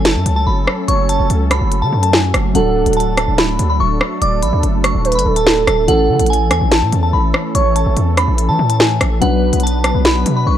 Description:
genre	hip hop, drill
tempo	144 BPM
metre	4/4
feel	half-time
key	unclear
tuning	A4 = 442 Hz
part	glassy synth bell	melody	0.0-10.6 s	F#5 to D6	-20 LUFS	left 1 dB	chorus, phaser, low-pass filter, digital delay
part	felt-muted upright piano	accompaniment	0.0-10.6 s	E3 to B4	-24 LUFS	left 3 dB	low-pass filter
part	warm analog pad	sustained chords	0.0-10.6 s	E3 to B4	-22 LUFS	equal	chorus
part	distorted 808-style bass	bass	0.0-10.6 s	D1 to E3	-16 LUFS	equal	distortion
part	drill drum kit	drums	0.1-10.4 s	hi-hat, rim click, snare drum	-16 LUFS	equal	none
part	gliding portamento lead	second line	0.9-9.6 s	A4 to D5	-20 LUFS	right 6 dB	chorus, digital delay
room	little or no reverb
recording	dark, warm production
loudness	-12 LUFS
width	side -10 dB against mid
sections	0.0-10.6 A section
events	none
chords	0.0 F#m; 2.5 D; 5.9 A; 9.2 Bm

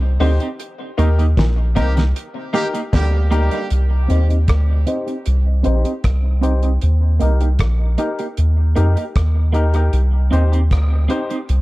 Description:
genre	dub reggae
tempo	77 BPM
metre	4/4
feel	straight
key	C minor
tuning	A4 = 440 Hz
part	auto-wah clav	riff	0.0-3.2 s	Bb2 to Eb3	-31 LUFS	left 6 dB	overdrive, tape echo
part	soft dub sub bass	bass	0.0-11.6 s	Bb1 to F2	-15 LUFS	equal	none
part	clean electric guitar	accompaniment	0.2-11.4 s	Bb3 to G4	-25 LUFS	right 4 dB	phaser, low-pass filter, tape echo
part	clear grand piano	stabs	0.2-11.3 s	Eb4 to C5	-26 LUFS	left 4 dB	low-pass filter, tape echo
part	damped 70s drum kit	drums	0.2-11.6 s	hi-hat, kick drum, rim click, snare drum	-21 LUFS	equal	none
part	clear horn section	second line	1.8-3.7 s	Eb3 to G4	-28 LUFS	right 3 dB	tape echo
room	studio reverb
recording	dark, warm production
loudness	-15 LUFS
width	side -19 dB against mid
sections	0.0-3.7 A section; 3.7-11.6 B section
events	band accent 0.6-3.7; filter sweep 3.7-11.6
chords	0.0 Cm; 6.8 Eb; 9.9 Cm

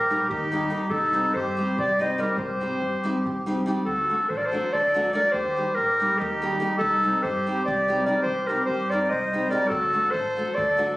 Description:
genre	balkan folk, Balkan wedding band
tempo	286 BPM (eighths)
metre	7/8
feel	straight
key	C dorian sharp4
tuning	A4 = 437 Hz
part	warm clarinet	melody	0.0-11.0 s	G4 to Eb5	-23 LUFS	equal	none
part	accordion	second line	0.0-11.0 s	Eb4 to C5	-31 LUFS	equal	light tremolo tuning
part	upright bass	bass	0.0-10.9 s	A1 to G2	-35 LUFS	equal	none
part	nylon-string guitar	accompaniment	0.1-10.9 s	F#3 to G4	-29 LUFS	equal	none
part	darbuka	percussion	0.1-3.8, 9.7-10.9 s	none	-44 LUFS	equal	none
room	moderate recital hall reverb, RT60 1.6 s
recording	recorded on a phone in the room, studio reverb, compression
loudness	-22 LUFS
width	side -19 dB against mid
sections	0.0-3.9 A section; 3.9-11.0 A section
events	none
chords	0.0 Eb; 0.9 Cm; 3.9 D; 5.3 Eb; 6.8 Cm; 9.7 D

